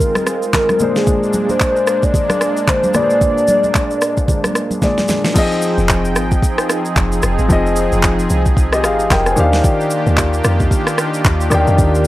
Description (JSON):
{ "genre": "amapiano", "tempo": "112 BPM", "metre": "4/4", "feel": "swing 58% on 16ths", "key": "F dorian", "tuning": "A4 = 439 Hz", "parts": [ { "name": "hollow clarinet-like synth lead", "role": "melody", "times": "0.0-4.8 s", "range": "Ab4 to D5", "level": "-16 LUFS", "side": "equal", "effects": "chorus, analog delay" }, { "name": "warm grand piano", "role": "accompaniment", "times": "0.0-12.1 s", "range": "Bb2 to Ab5", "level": "-19 LUFS", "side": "left 2 dB", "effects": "none" }, { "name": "warm analog pad", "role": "sustained chords", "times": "0.0-12.1 s", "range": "Eb3 to G5", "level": "-21 LUFS", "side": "equal", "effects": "chorus, tremolo" }, { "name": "smooth R&B drum kit", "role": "drums", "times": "0.0-12.1 s", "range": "crash cymbal, handclaps, kick drum, rim click, shaker, snare drum", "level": "-17 LUFS", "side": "equal", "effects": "none" }, { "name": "congas", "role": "percussion", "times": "0.0-5.2 s", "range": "none", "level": "-24 LUFS", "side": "right 1 dB", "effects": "none" }, { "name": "deep log drum bass", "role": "bass", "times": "5.8-12.1 s", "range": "F1 to F2", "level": "-17 LUFS", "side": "equal", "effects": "none" } ], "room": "digital ambience", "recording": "dry, gritty hardware recording", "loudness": "-12 LUFS", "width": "side -16 dB against mid", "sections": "0.0-5.4 A section; 5.4-12.1 B section", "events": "drum fill 4.8-5.4; drop 5.4-12.1", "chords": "0.0 Ab6; 0.8 Bb9; 5.4 Fm7; 9.4 Ebmaj9" }